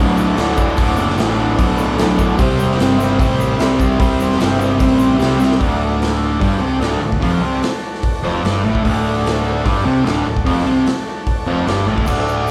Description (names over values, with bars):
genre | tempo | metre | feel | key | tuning
garage rock duo or trio | 148 BPM | 4/4 | straight | D mixolydian | A4 = 440 Hz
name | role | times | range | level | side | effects
combo organ | sustained chords | 0.0-12.5 s | F#4 to E5 | -29 LUFS | equal | none
fuzz guitar | riff | 0.0-12.5 s | D2 to C4 | -18 LUFS | equal | distortion
fuzz picked electric bass | bass | 0.0-12.5 s | D1 to D2 | -24 LUFS | equal | overdrive
tube shaker | percussion | 0.2-5.6, 12.1-12.5 s | none | -44 LUFS | equal | none
raw garage drum kit | drums | 0.4-12.5 s | crash cymbal, hi-hat, kick drum, snare drum | -23 LUFS | equal | none
room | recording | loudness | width
wet large studio reverb, RT60 0.8 s | band playing live in one room | -16 LUFS | mono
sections
0.0-5.6 A section; 5.6-12.5 B section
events
drum fill 5.4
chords
0.0 D; 2.4 C; 5.6 D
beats
0.37 | 0.77 1.17 1.58 1.98 | 2.38 2.78 3.19 3.59 | 3.99 4.39 4.80 5.20 | 5.61 6.01 6.41 6.82 | 7.22 7.63 8.03 8.44 | 8.84 9.25 9.65 10.06 | 10.46 10.87 11.27 11.67 | 12.08 12.48